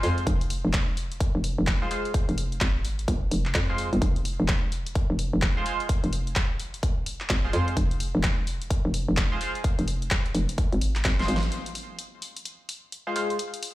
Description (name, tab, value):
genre	bass house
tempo	128 BPM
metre	4/4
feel	swing 62% on 16ths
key	F minor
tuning	A4 = 440 Hz
part	band-passed chord stab	stabs	0.0-13.4 s	Ab3 to C5	-32 LUFS	equal	lush chorus, sidechain pumping, ping-pong delay
part	hollow knocking FM bass	bass	0.0-11.5 s	F1 to F2	-26 LUFS	equal	overdrive, sidechain pumping
part	big-room dance drum kit	drums	0.0-13.7 s	handclaps, hi-hat, snare drum	-32 LUFS	equal	small room ambience
part	electronic kick drum	drums	0.3-11.2 s	none	-26 LUFS	equal	small room ambience
room	little or no reverb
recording	played on a big sound system in a bare room, large studio reverb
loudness	-24 LUFS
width	side -16 dB against mid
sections	0.0-11.5 A section; 11.5-13.7 B section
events	drum fill 11.0-11.5; band accent 11.4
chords	0.0 Fm